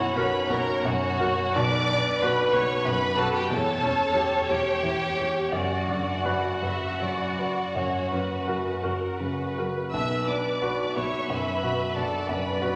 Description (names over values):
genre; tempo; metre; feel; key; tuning
classical, romantic movement for piano and orchestra; 52-64 BPM (dotted quarters); 12/8; rubato; B minor; A4 = 438 Hz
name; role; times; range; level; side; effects
clear baby grand piano; melody; 0.0-12.8 s; B1 to C#5; -30 LUFS; equal; none
rich studio violin section; melody; 0.0-12.8 s; F#5 to E6; -35 LUFS; equal; none
rich studio violin section; second line; 0.0-12.8 s; F#4 to E5; -32 LUFS; equal; none
rich symphonic viola section; accompaniment; 0.0-12.8 s; A#4 to E5; -33 LUFS; equal; none
rich symphonic double bass section; bass; 0.2-12.7 s; E1 to B1; -40 LUFS; equal; none
warm symphonic cello section; bass; 0.2-12.7 s; E2 to B2; -40 LUFS; equal; none
room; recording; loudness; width
wet recital hall reverb, RT60 1.7 s; nothing above 10.3 kHz; -26 LUFS; mono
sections
0.0-12.8 A section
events
none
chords
0.0 F#7/B; 1.6 Bm; 3.5 C#dim/E; 5.5 Bm/F#; 7.8 F#; 9.9 Bm